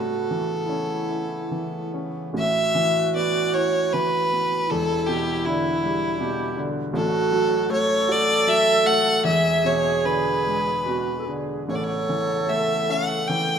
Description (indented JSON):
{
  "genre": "celtic folk, Celtic slow air",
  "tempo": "70-80 BPM",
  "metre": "3/4",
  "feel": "rubato",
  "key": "A major",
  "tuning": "A4 = 441 Hz",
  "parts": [
    { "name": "rich fiddle", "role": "melody", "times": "0.0-13.6 s", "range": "E4 to G5", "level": "-22 LUFS", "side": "left 1 dB", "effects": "none" },
    { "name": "baroque flute", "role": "second line", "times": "0.0-13.6 s", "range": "E4 to A4", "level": "-26 LUFS", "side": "right 4 dB", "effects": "none" },
    { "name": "warm upright piano", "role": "accompaniment", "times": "0.0-13.6 s", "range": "E1 to F#4", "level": "-27 LUFS", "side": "equal", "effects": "none" },
    { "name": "hand-pumped harmonium", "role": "sustained chords", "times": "0.0-2.3, 11.7-13.6 s", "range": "C#3 to B3", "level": "-36 LUFS", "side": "right 1 dB", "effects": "none" }
  ],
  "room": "moderate concert hall reverb, RT60 1.9 s",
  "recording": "minimal, uncompressed stereo recording",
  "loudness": "-20 LUFS",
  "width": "side -7 dB against mid",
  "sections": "0.0-2.3 A section; 2.3-13.6 A section",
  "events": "none",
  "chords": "0.0 Aadd9; 2.3 Asus2; 4.7 Em7; 6.9 A5; 9.2 E7; 11.7 Aadd9"
}